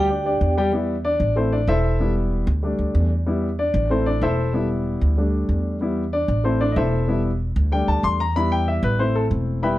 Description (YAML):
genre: latin, salsa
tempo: 189 BPM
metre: 4/4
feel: straight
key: E minor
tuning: A4 = 440 Hz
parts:
  - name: vibraphone with medium hard mallets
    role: melody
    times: 0.0-0.5 s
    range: G4 to G5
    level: -25 LUFS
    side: right 3 dB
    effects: plate reverb
  - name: warm grand piano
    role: accompaniment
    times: 0.0-9.8 s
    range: G3 to C6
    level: -22 LUFS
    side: left 1 dB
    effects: none
  - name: upright bass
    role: bass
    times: 0.0-9.8 s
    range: E1 to E2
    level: -22 LUFS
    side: equal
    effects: none
room: light reverb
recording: dark, warm production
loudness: -19 LUFS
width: side -15 dB against mid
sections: 0.7-9.8 A section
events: grand piano solo 0.7-9.8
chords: 0.1 Dsus4; 0.7 Em; 1.4 Am; 2.0 Em; 2.6 Dsus4; 3.3 Em; 3.9 Am; 4.5 Em; 5.2 Dsus4; 5.8 Em; 6.5 Am; 7.1 Em; 7.7 Dsus4; 8.4 Em; 9.0 Am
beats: 0.10 0.41 | 0.73 1.05 1.37 1.68 | 2.00 2.32 2.63 2.95 | 3.27 3.59 3.91 4.22 | 4.54 4.86 5.18 5.50 | 5.82 6.13 6.45 6.77 | 7.09 7.41 7.72 8.04 | 8.36 8.68 8.99 9.31 | 9.63